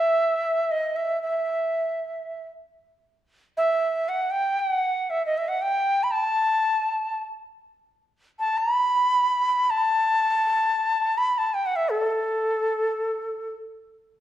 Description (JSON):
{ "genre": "arabic", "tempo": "free time", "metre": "none", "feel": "none", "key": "unclear", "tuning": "A4 = 440 Hz", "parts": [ { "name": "breathy bright ney", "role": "solo", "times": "0.0-13.5 s", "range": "A4 to B5", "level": "-22 LUFS", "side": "equal", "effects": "slapback echo" } ], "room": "moderate recital hall reverb, RT60 1.3 s", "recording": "dark, warm production", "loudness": "-22 LUFS", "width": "side -12 dB against mid", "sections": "0.0-14.2 A section", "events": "none", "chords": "none" }